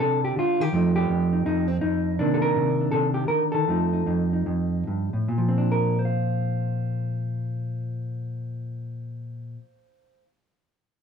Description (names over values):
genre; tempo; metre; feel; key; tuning
solo jazz; 140-165 BPM; 4/4; swing 65% on 8ths; Bb major; A4 = 441 Hz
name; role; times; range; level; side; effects
hollow-body jazz guitar; solo; 0.0-10.2 s; F2 to F5; -22 LUFS; equal; none
room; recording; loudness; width
moderate studio reverb, RT60 0.9 s; close, detailed microphones; -22 LUFS; side -6 dB against mid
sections
0.0-5.3 A section; 5.3-8.7 B section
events
slowing down 2.2-5.3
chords
0.0 Cmadd9; 0.7 F7; 2.2 Cm9; 3.7 F7; 5.3 Bbsus2